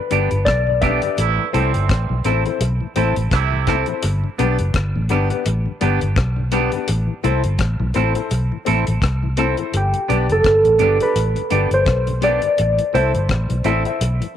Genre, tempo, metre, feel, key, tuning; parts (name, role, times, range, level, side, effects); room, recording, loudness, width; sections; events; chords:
roots reggae; 84 BPM; 4/4; swing 57% on 16ths; G major; A4 = 440 Hz
concert harp; melody; 0.0-2.9, 9.8-14.4 s; G4 to E5; -19 LUFS; equal; tape echo
mellow tonewheel organ; accompaniment; 0.0-14.3 s; G2 to E4; -28 LUFS; left 10 dB; chorus vibrato, slow rotary speaker
clean electric guitar; accompaniment; 0.1-13.8 s; B3 to A4; -25 LUFS; right 11 dB; tape echo
clear upright piano; stabs; 0.1-14.0 s; B3 to E5; -26 LUFS; left 10 dB
vintage muted fingered electric bass; bass; 0.1-14.2 s; F#1 to C2; -19 LUFS; equal
deep reggae drum kit; drums; 0.1-14.4 s; hi-hat, kick drum, rim click; -23 LUFS; left 2 dB; tape echo
brilliant trombone section; second line; 1.2-3.8 s; A2 to E4; -24 LUFS; right 13 dB; tape echo
moderate spring reverb, RT60 2.0 s; 1960s-style stereo with parts hard left and right; -16 LUFS; side -10 dB against mid
0.0-9.7 A section; 9.7-14.4 B section
0.0 G; 1.2 Am; 4.0 G; 6.9 Am; 9.7 G; 12.6 Am